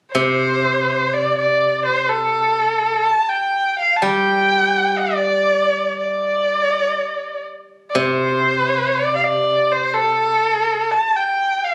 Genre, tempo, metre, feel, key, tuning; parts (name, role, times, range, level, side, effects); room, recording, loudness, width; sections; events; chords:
chinese traditional, Chinese chamber ensemble; 62 BPM; 2/4; rubato; A4 = 440 Hz
rich erhu; melody; 0.1-11.7 s; A4 to A5; -19 LUFS; equal
steel-string zither; accompaniment; 0.1-10.9 s; C3 to G3; -25 LUFS; equal
moderate recital hall reverb, RT60 1.4 s; recorded on a phone in the room, studio reverb, compression; -18 LUFS; mono
0.2-11.7 A section